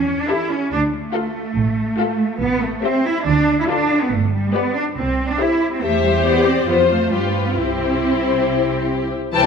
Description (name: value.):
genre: quick classical-period movement for string orchestra.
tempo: 140 BPM.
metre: 4/4.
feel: straight.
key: C major.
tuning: A4 = 443 Hz.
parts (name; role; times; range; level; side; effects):
warm symphonic cello section; bass; 0.0-9.5 s; C2 to E4; -20 LUFS; right 2 dB; none.
warm symphonic double bass section; bass; 0.0-9.5 s; G1 to G2; -24 LUFS; right 4 dB; none.
warm symphonic violin section; melody; 0.3-9.5 s; B4 to A5; -23 LUFS; left 8 dB; none.
rich symphonic violin section; second line; 0.3-9.4 s; G4 to G5; -24 LUFS; left 6 dB; none.
warm symphonic viola section; accompaniment; 0.3-9.4 s; E3 to G4; -23 LUFS; left 2 dB; none.
room: wet scoring stage reverb, RT60 1.9 s.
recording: none.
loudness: -16 LUFS.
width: side -6 dB against mid.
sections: 0.0-9.3 A section.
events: none.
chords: 0.0 A7/E; 0.7 Dm; 2.4 Am7; 3.3 Dm; 4.1 G; 5.0 C; 5.8 C/E; 6.7 F; 7.1 G7; 7.6 C.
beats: 0.30 | 0.73 1.15 1.57 2.00 | 2.43 2.85 3.28 3.70 | 4.13 4.56 4.98 5.41 | 5.84 6.26 6.69 7.13 | 7.57 8.01 8.45 8.89 | 9.34.